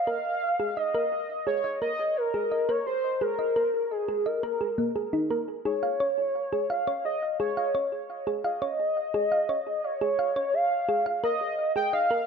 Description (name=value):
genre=IDM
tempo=86 BPM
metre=4/4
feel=straight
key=Db major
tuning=A4 = 440 Hz
part: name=warm velvety synth lead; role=melody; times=0.0-12.3 s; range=Ab4 to G5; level=-26 LUFS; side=equal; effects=chorus, tape echo
part: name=thumb-piano-like synth pluck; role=arpeggios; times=0.1-12.2 s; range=Bb3 to F5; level=-30 LUFS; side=right 1 dB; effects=chorus, tape echo
room=wet spring reverb, RT60 1.2 s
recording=echo-heavy mix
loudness=-25 LUFS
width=side -6 dB against mid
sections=0.0-5.7 A section; 5.7-12.3 B section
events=none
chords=0.1 Ebsus4; 5.7 Db; 11.2 Ebsus4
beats=| 0.07 0.77 1.47 2.17 | 2.86 3.56 4.26 4.96 | 5.65 6.35 7.05 7.75 | 8.45 9.14 9.84 10.54 | 11.24 11.93